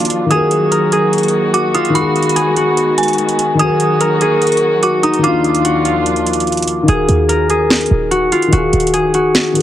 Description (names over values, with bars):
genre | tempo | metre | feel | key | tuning
hip hop, trap | 146 BPM | 4/4 | half-time | Eb harmonic minor | A4 = 440 Hz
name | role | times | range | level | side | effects
concert harp | melody | 0.0-9.6 s | Eb4 to Bb4 | -14 LUFS | left 1 dB | low-pass filter
dark detuned synth bell | second line | 0.0-6.8 s | G#5 to Eb6 | -20 LUFS | right 3 dB | chorus, ping-pong delay
dark concert grand piano | accompaniment | 0.0-9.6 s | Eb3 to Bb4 | -18 LUFS | left 3 dB | low-pass filter
muted chamber string section | sustained chords | 0.0-6.9 s | Eb2 to Gb4 | -20 LUFS | right 1 dB | none
trap drum kit | drums | 0.0-9.6 s | hi-hat, snare drum | -19 LUFS | right 2 dB | overdrive, vintage 12-bit sampler grit
short 808-style bass | bass | 6.9-9.3 s | Eb1 to Eb2 | -17 LUFS | right 1 dB | none
room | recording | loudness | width
light reverb, studio ambience | heavily compressed radio sound | -11 LUFS | side -11 dB against mid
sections
0.3-6.9 A section; 6.9-9.6 B section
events
break 0.0-0.3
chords
0.3 Ebm; 2.0 B6/D#; 3.6 Ebm; 5.2 Bb/Eb; 6.9 Ebm; 8.5 Ebmadd11